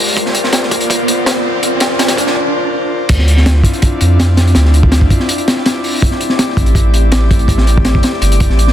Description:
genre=drum and bass, jungle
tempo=164 BPM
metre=4/4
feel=straight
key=unclear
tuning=A4 = 440 Hz
part: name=airy breathy pad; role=sustained chords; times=0.0-8.7 s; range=A3 to D5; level=-18 LUFS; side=left 2 dB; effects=chorus, vintage 12-bit sampler grit
part: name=riser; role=sound effects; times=0.0-2.4 s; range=none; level=-18 LUFS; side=right 3 dB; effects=none
part: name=drifting glass-harmonics texture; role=texture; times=0.0-8.7 s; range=C5 to D6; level=-25 LUFS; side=left 4 dB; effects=chorus, built-in reverb
part: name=crunchy breakbeat drum kit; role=drums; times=0.2-8.7 s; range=crash cymbal, hi-hat, kick drum, snare drum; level=-13 LUFS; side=equal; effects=high-pass filter on kick, high-pass filter on hats, high-pass filter on cymbals, high-pass filter on snare, high-pass filter on room
part: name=saturated sub bass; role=bass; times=3.1-8.7 s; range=G1 to F2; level=-10 LUFS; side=equal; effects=none
room=small room reverb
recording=dense, heavily limited modern master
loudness=-10 LUFS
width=side -11 dB against mid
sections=0.0-3.1 A section; 3.1-8.7 B section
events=build-up 0.0-3.1; riser 0.0-2.4; break 2.4-3.1; drop 3.1-8.7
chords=0.2 C9sus4; 3.1 Dm9; 6.0 Am7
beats=| 0.17 0.54 0.90 1.27 | 1.63 2.00 2.37 2.73 | 3.10 3.46 3.83 4.19 | 4.56 4.93 5.29 5.66 | 6.02 6.39 6.75 7.12 | 7.49 7.85 8.22 8.58

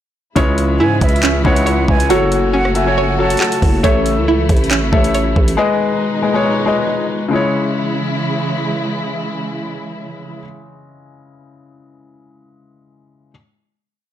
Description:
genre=hip hop, drill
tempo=138 BPM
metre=4/4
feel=half-time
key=C# minor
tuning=A4 = 442 Hz
part: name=felt-muted upright piano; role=accompaniment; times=0.4-13.3 s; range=C#3 to E5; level=-17 LUFS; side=left 4 dB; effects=low-pass filter
part: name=dark symphonic string section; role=sustained chords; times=0.4-10.4 s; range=B2 to F#4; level=-23 LUFS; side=right 1 dB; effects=none
part: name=string-like resonator pluck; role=arpeggios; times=0.4-5.6 s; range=C#4 to C#5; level=-19 LUFS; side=right 4 dB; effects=chorus, low-pass filter, tape echo
part: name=growling 808-style bass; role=bass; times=0.4-5.6 s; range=F#1 to G#2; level=-18 LUFS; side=right 1 dB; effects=none
part: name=drill drum kit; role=drums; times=0.4-5.6 s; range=handclaps, hi-hat, kick drum, rim click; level=-16 LUFS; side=equal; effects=none
part: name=breathy concert flute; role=second line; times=0.8-3.8 s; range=E5 to A5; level=-23 LUFS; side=right 6 dB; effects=tape echo
room=light reverb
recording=blown-out, overdriven recording, overdrive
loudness=-13 LUFS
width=side -11 dB against mid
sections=0.4-7.3 hook; 7.3-10.8 final chord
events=felt piano fill 6.0-7.3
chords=0.4 C#m; 2.1 F#m; 3.8 A; 5.6 G#m; 7.3 C#m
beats=| 0.36 0.80 1.23 1.67 | 2.10 2.54 2.97 3.40 | 3.84 4.28 4.71 5.14 | 5.58 6.01 6.45 6.88 | 7.32 7.75 8.19 8.62 | 9.06 9.49 9.93 10.36

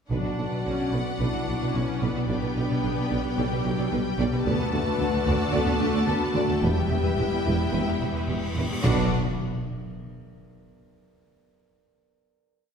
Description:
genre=cinematic, epic orchestral film score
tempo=110 BPM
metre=4/4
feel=straight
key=B minor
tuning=A4 = 440 Hz
part: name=rich chamber violin section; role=melody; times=0.1-9.1 s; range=F#5 to A5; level=-35 LUFS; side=left 4 dB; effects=none
part: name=rich symphonic violin section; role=second line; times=0.1-9.1 s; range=D4 to F#5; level=-36 LUFS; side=left 2 dB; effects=none
part: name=rich symphonic viola section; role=accompaniment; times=0.1-9.1 s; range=F#3 to D4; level=-31 LUFS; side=left 1 dB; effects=none
part: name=mellow French horn section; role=sustained chords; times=0.1-9.1 s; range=B3 to B4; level=-33 LUFS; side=left 4 dB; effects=none
part: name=rich symphonic string section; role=sustained chords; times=0.1-9.1 s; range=B3 to E5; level=-34 LUFS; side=right 1 dB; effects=none
part: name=rich studio double bass section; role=bass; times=0.1-9.1 s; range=E1 to D2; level=-31 LUFS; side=right 1 dB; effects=none
part: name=rich symphonic cello section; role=bass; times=0.1-9.1 s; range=D2 to B2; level=-30 LUFS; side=right 1 dB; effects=none
part: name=warm tuba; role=bass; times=0.1-9.1 s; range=E1 to D2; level=-32 LUFS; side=right 1 dB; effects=none
part: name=timpani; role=percussion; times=0.1-0.9, 8.8-9.1 s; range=B2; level=-31 LUFS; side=right 1 dB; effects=none
part: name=cymbal swell and impact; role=sound effects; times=8.1-11.0 s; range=none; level=-36 LUFS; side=left 1 dB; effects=none
room=wet scoring stage reverb, RT60 1.6 s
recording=heard from further back in the room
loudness=-23 LUFS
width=side -7 dB against mid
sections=0.1-8.8 theme; 8.8-11.0 final chord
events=cymbal swell 8.1-8.8; impact 8.8-11.0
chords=0.1 Bm; 2.3 G/B; 4.5 D; 6.6 Em; 8.8 Bm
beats=| 0.11 0.66 1.21 1.75 | 2.29 2.84 3.38 3.92 | 4.46 5.00 5.54 6.08 | 6.63 7.18 7.73 8.29 | 8.84 9.38 9.93 10.47

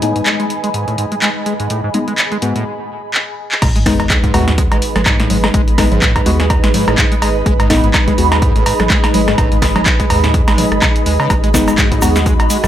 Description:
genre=acid house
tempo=125 BPM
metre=4/4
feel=swing 57% on 16ths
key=G# minor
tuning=A4 = 441 Hz
part: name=dark analog pad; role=sustained chords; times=0.0-12.7 s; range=G#3 to B4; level=-22 LUFS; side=right 1 dB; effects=chorus, sidechain pumping
part: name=liquid acid bass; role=riff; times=0.0-12.7 s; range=G#2 to G#3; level=-20 LUFS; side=equal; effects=overdrive, analog chorus, digital delay
part: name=deep mellow chord stab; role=stabs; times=0.0-8.3, 11.5-12.2 s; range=G#3 to F#4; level=-20 LUFS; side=left 3 dB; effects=chorus, digital delay
part: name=punchy analog drum machine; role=drums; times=0.0-12.7 s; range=congas, cowbell, crash cymbal, handclaps, hi-hat, rim click, snare drum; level=-17 LUFS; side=equal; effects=none
part: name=ethereal airy pad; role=texture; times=0.0-12.7 s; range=G#4 to B5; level=-21 LUFS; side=right 2 dB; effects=ensemble chorus, built-in reverb, phaser, sidechain pumping
part: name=round analog bass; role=bass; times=3.6-12.7 s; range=G#1 to D#2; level=-18 LUFS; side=equal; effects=tube saturation, sidechain pumping
part: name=electronic kick drum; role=drums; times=3.6-12.4 s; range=none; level=-15 LUFS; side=equal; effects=none
part: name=sub drop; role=sound effects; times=3.6-5.5 s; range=none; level=-24 LUFS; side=equal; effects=none
part: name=egg shaker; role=percussion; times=11.3-12.7 s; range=none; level=-24 LUFS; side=right 1 dB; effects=none
room=light reverb, digital ambience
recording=none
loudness=-11 LUFS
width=side -11 dB against mid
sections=0.0-3.6 A section; 3.6-12.7 B section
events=filter sweep on acid bass 0.0-3.6; break 2.7-3.6; drum fill 3.1-3.6; drop 3.6-12.7; impact 3.6-5.5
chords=0.0 G#m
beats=0.26 0.74 1.22 | 1.70 2.18 2.66 3.14 | 3.62 4.10 4.58 5.06 | 5.54 6.02 6.50 6.98 | 7.46 7.94 8.42 8.90 | 9.38 9.86 10.34 10.82 | 11.30 11.78 12.26

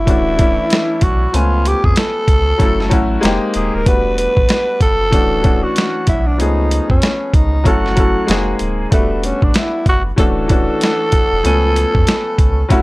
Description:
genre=hip hop, jazz-hop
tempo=95 BPM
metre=4/4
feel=swing 60% on 16ths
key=unclear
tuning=A4 = 440 Hz
part: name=growling tenor saxophone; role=melody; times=0.0-12.8 s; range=A3 to B4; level=-18 LUFS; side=equal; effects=none
part: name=soft dub sub bass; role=bass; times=0.0-12.8 s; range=D1 to E#2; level=-18 LUFS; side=equal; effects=none
part: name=clear upright piano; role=accompaniment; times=0.1-12.8 s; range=E3 to G#5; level=-19 LUFS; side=left 2 dB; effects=plate reverb
part: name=boom bap sampler-style drum kit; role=drums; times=0.1-12.8 s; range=hi-hat, kick drum, snare drum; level=-15 LUFS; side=equal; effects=none
room=light reverb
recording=none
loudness=-12 LUFS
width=side -21 dB against mid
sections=0.0-12.8 A section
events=none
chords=0.1 Dmaj9; 1.3 C#7b13; 2.6 F#m7; 3.2 Fm11; 3.9 Em11; 5.1 Dmaj9; 6.4 C#7b13; 7.7 F#m7; 8.3 Fm7; 8.9 Em11; 10.2 Dmaj9; 11.4 C#7b13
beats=0.07 0.71 | 1.34 1.97 2.60 3.23 | 3.86 4.50 5.13 5.76 | 6.39 7.02 7.65 8.29 | 8.92 9.55 10.18 10.81 | 11.44 12.07 12.71

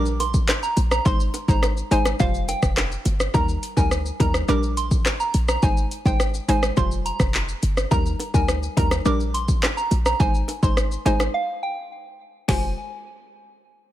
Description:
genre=dancehall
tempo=105 BPM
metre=4/4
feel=straight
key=F dorian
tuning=A4 = 441 Hz
part: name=hollow square pluck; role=accompaniment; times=0.0-12.7 s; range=G3 to C5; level=-27 LUFS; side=left 1 dB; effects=chorus, sidechain pumping
part: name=short 808-style bass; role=bass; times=0.0-12.8 s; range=F1 to Eb2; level=-23 LUFS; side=equal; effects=none
part: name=afro-pop drum kit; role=drums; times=0.1-12.6 s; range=handclaps, hi-hat, kick drum, rim click, shaker, snare drum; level=-22 LUFS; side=equal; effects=overdrive
part: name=soft synth bell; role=melody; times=0.2-12.8 s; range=F5 to D6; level=-27 LUFS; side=right 2 dB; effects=chorus, ping-pong delay
part: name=bongos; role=percussion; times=0.2-3.2, 8.2-12.8 s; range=none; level=-33 LUFS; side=right 4 dB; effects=none
room=digital ambience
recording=none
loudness=-19 LUFS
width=side -13 dB against mid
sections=0.0-3.3 A section; 3.3-12.5 B section; 12.5-13.9 C section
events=break 11.3-12.5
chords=0.0 Bb6; 1.1 Ab; 2.2 Fsus2; 3.3 Eb; 4.5 Bb6; 5.6 Ab; 6.8 Fsus2; 7.9 Eb; 9.1 Bb6; 10.2 Ab; 11.3 N.C.; 12.5 Fm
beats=0.49 | 1.06 1.63 2.20 2.77 | 3.34 3.91 4.49 5.06 | 5.63 6.20 6.77 7.34 | 7.91 8.49 9.06 9.63 | 10.20 10.77 11.34 11.91 | 12.49

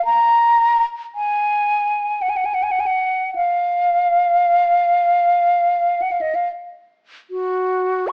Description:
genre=classical, free, expressive piece for unaccompanied flute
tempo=34-58 BPM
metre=3/4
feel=rubato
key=unclear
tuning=A4 = 440 Hz
part: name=mellow silver concert flute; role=solo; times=0.0-8.1 s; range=Gb4 to Db6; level=-15 LUFS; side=equal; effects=none
room=moderate stone room reverb, RT60 1.0 s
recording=AM radio sound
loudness=-15 LUFS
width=side -27 dB against mid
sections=0.0-8.1 A section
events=none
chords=none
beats=| 0.07 1.15 2.20 | 3.35 4.59 5.81 | 7.34

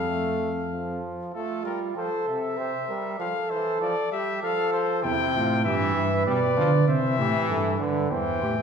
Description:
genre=classical, imitative canzona for brass ensemble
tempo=97 BPM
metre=3/4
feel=straight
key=F major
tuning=A4 = 440 Hz
part: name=clear trumpet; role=melody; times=0.0-8.6 s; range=A4 to G5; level=-29 LUFS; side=left 6 dB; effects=none
part: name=mellow flugelhorn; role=second line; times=0.0-8.6 s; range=E4 to C5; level=-28 LUFS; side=right 2 dB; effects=none
part: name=brilliant trombone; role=accompaniment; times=0.0-8.6 s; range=C3 to A3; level=-30 LUFS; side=right 1 dB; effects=none
part: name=dark tuba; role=bass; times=0.0-1.0, 5.0-8.6 s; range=E2 to D3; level=-26 LUFS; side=right 2 dB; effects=none
room=wet recital hall reverb, RT60 1.5 s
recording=heard from further back in the room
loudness=-23 LUFS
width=side -6 dB against mid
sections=0.0-1.3 A section; 1.3-8.6 B section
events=none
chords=0.0 F; 2.6 C; 3.2 F; 5.0 C/E; 6.3 G/B; 6.9 C; 8.1 C/E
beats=0.09 0.72 | 1.35 1.97 2.58 | 3.20 3.81 4.43 | 5.04 5.65 6.27 | 6.88 7.50 8.11

